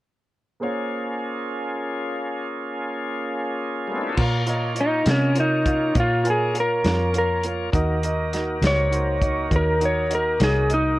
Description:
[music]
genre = slow blues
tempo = 68 BPM (dotted quarters)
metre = 12/8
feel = straight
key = Bb minor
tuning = A4 = 444 Hz
[part]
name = dark grand piano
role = accompaniment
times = 0.6-10.9 s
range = Bb3 to Ab5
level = -29 LUFS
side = right 2 dB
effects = none
[part]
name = bright tonewheel organ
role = sustained chords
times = 0.6-11.0 s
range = G3 to Db5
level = -28 LUFS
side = equal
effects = slow rotary speaker, overdrive
[part]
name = vintage muted fingered electric bass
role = bass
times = 4.2-11.0 s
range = C2 to C3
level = -24 LUFS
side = equal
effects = none
[part]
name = warm soul drum kit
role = drums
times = 4.2-10.8 s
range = crash cymbal, hi-hat, kick drum, snare drum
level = -25 LUFS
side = equal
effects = none
[part]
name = electric slide guitar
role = melody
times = 4.8-11.0 s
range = Db4 to Db5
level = -22 LUFS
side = equal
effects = none
[sound]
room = light reverb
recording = worn, warbling old tape, cassette tape, warbly pitch drift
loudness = -20 LUFS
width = side -17 dB against mid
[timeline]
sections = 0.6-4.2 A section; 4.2-11.0 B section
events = electric slide guitar solo 4.2-11.0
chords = 0.6 Bbm7; 4.2 Bbm; 7.7 Ebm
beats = | 0.63 1.52 2.41 3.29 | 4.18 5.07 5.96 6.85 | 7.74 8.62 9.51 10.40

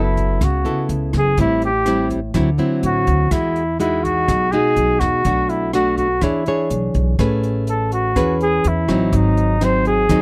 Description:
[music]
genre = bossa nova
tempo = 124 BPM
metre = 4/4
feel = straight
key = E major, A major from 7.2 s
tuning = A4 = 440 Hz
[part]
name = warm flugelhorn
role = melody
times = 0.0-10.2 s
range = D#4 to B#4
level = -21 LUFS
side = equal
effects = none
[part]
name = nylon-string guitar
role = accompaniment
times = 0.0-10.2 s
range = G#2 to C#5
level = -22 LUFS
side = equal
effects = none
[part]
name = upright bass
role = bass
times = 0.0-10.2 s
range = F#1 to E2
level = -23 LUFS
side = equal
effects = none
[part]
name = compact cocktail drum kit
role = drums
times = 0.2-10.2 s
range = hi-hat, kick drum, rim click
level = -27 LUFS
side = equal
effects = none
[sound]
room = little or no reverb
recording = dry, close 1970s-style studio recording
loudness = -18 LUFS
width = mono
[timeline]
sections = 0.0-7.2 A section; 7.2-10.2 B section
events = flugelhorn solo 7.2-10.2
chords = 0.0 F#m7; 1.4 Am7; 2.3 D9; 3.3 Emaj9; 5.3 Bm7; 6.2 E6; 7.2 Amaj9; 9.1 G#7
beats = 0.41 0.89 | 1.38 1.86 2.34 2.83 | 3.31 3.80 4.28 4.77 | 5.25 5.74 6.22 6.71 | 7.19 7.68 8.16 8.64 | 9.13 9.61 10.10

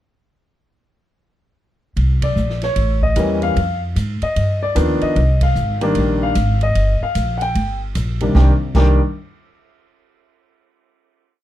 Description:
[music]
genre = jazz piano trio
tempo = 150 BPM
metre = 4/4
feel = swing 64% on 8ths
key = C minor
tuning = A4 = 440 Hz
[part]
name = upright bass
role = bass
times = 2.0-9.0 s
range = G1 to Ab2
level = -17 LUFS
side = equal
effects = none
[part]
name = swinging big-band drum kit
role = drums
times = 2.0-8.9 s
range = crash cymbal, hi-hat, kick drum, ride cymbal, snare drum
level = -26 LUFS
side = right 2 dB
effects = none
[part]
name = warm grand piano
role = melody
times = 2.2-9.0 s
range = C2 to G5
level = -19 LUFS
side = left 1 dB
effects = none
[sound]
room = light reverb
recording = dark, warm production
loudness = -15 LUFS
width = side -13 dB against mid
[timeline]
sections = 2.0-8.4 A section; 8.4-9.9 final chord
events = band accent 2.2, 5.4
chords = 2.0 Bbadd9; 2.8 A7b9; 3.6 Fm; 4.4 G7b13; 5.2 Cm7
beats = | 1.96 2.36 2.76 3.16 | 3.56 3.96 4.36 4.76 | 5.16 5.56 5.96 6.36 | 6.76 7.16 7.55 7.95 | 8.35 8.75

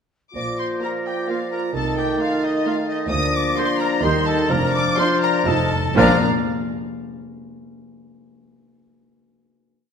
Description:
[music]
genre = quick classical-period movement for symphony orchestra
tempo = 117-133 BPM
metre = 3/4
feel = rubato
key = Bb major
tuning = A4 = 440 Hz
[part]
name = rich chamber violin section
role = melody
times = 0.3-6.2 s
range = Eb5 to Eb6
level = -26 LUFS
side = left 4 dB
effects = none
[part]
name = silver concert flute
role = second line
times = 0.3-6.2 s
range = F6 to Bb6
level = -31 LUFS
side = equal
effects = none
[part]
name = warm French horn section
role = sustained chords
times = 0.3-6.2 s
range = F3 to F4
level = -26 LUFS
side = left 3 dB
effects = none
[part]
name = rich chamber double bass section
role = bass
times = 0.3-6.2 s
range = F1 to Eb2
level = -27 LUFS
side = right 3 dB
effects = none
[part]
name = rich chamber violin section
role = second line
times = 0.4-6.3 s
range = Eb5 to Eb6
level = -29 LUFS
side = left 2 dB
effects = none
[part]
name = warm clarinet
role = second line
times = 0.4-6.2 s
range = D5 to Eb5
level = -31 LUFS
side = equal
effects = none
[part]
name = warm oboe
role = second line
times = 0.4-6.2 s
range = Eb4 to Eb5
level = -28 LUFS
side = right 2 dB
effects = none
[part]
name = dark bassoon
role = accompaniment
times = 0.4-6.2 s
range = Eb3 to F3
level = -26 LUFS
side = right 2 dB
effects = none
[part]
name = warm chamber cello section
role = bass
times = 0.4-6.2 s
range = D2 to C3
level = -25 LUFS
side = right 3 dB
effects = none
[part]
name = rich chamber viola section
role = accompaniment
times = 0.8-6.3 s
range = F3 to F4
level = -27 LUFS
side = right 2 dB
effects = none
[part]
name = timpani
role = percussion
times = 5.5-6.2 s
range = F2 to Bb2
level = -26 LUFS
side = left 4 dB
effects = none
[sound]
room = wet scoring stage reverb, RT60 1.6 s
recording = none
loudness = -18 LUFS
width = side -6 dB against mid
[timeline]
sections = 0.4-6.0 A section; 6.0-7.4 final chord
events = slowing down 2.4-6.0; timpani fill 5.5-6.0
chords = 0.4 Bb; 1.8 Adim/C; 3.1 Bb/D; 4.0 Cm/Eb; 4.5 Bbadd9/F; 5.5 F7; 6.0 Bb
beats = | 0.35 0.82 1.29 | 1.75 2.21 2.66 | 3.12 3.58 4.04 | 4.50 4.98 5.47 | 5.97

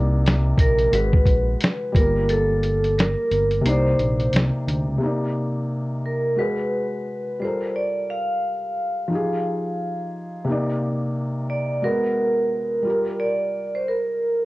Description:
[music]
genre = lo-fi hip hop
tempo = 88 BPM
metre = 4/4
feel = swing 60% on 16ths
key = C minor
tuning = A4 = 440 Hz
[part]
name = felt-muted upright piano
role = accompaniment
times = 0.0-14.5 s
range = C3 to D5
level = -25 LUFS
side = left 1 dB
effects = cassette tape, low-pass filter
[part]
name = smooth synth bass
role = bass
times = 0.0-5.0 s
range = G1 to D2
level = -22 LUFS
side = equal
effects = none
[part]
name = lo-fi sampler-style drum kit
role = drums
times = 0.3-4.9 s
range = hi-hat, kick drum, snare drum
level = -20 LUFS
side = equal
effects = vintage 12-bit sampler grit
[part]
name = vibraphone with medium hard mallets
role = melody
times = 0.6-14.5 s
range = A4 to F5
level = -23 LUFS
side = right 1 dB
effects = low-pass filter
[sound]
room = moderate small room reverb, RT60 0.5 s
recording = worn, warbling old tape, cassette tape, warbly pitch drift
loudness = -20 LUFS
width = side -19 dB against mid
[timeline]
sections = 0.0-5.0 A section; 5.0-14.5 B section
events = kick muted 2.3-5.0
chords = 0.0 Cm9; 0.9 Abm9; 1.9 Gm9; 3.6 Cm9; 6.4 Abm7; 7.4 Gm9; 9.1 Fm9; 10.5 Cm9; 11.8 Abm9; 12.9 Gm7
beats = 0.24 0.92 1.60 | 2.28 2.97 3.65 4.33 | 5.01 5.69 6.38 7.06 | 7.74 8.42 9.10 9.78 | 10.47 11.15 11.83 12.51 | 13.19 13.88

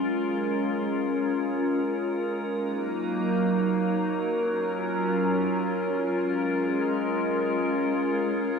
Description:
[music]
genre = hip hop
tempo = free time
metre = none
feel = none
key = Bb minor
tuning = A4 = 441 Hz
[part]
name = glassy FM pad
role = solo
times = 0.0-8.6 s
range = Gb3 to Bb4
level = -24 LUFS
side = equal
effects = ensemble chorus, built-in reverb
[sound]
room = wet lush hall reverb, RT60 2.8 s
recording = none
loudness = -24 LUFS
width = side -5 dB against mid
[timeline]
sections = 0.0-8.6 A section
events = none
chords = 0.0 Bbm7; 2.4 Ebm; 4.2 Gbmaj7; 5.9 Bbm7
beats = free time

